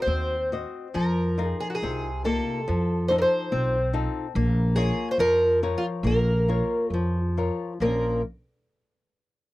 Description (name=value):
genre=fado-style ballad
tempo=67-73 BPM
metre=2/4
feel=rubato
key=Bb minor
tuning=A4 = 440 Hz
part: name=fingerpicked twelve-string acoustic guitar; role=melody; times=0.0-8.2 s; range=F4 to C5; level=-25 LUFS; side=equal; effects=none
part: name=flamenco guitar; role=accompaniment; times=0.0-8.2 s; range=Bb2 to Eb5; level=-29 LUFS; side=left 3 dB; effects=none
part: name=upright bass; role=bass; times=0.1-8.2 s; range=Bb1 to F2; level=-26 LUFS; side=right 1 dB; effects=none
room=little or no reverb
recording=dry, close 1970s-style studio recording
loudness=-22 LUFS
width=side -17 dB against mid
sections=0.0-7.8 A section; 7.8-9.5 B section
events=none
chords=0.0 Cdim; 1.0 F7sus4; 2.7 F7; 4.3 Bbm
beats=0.08 | 0.95 1.82 | 2.68 3.51 | 4.34 5.18 | 6.03 6.91 | 7.80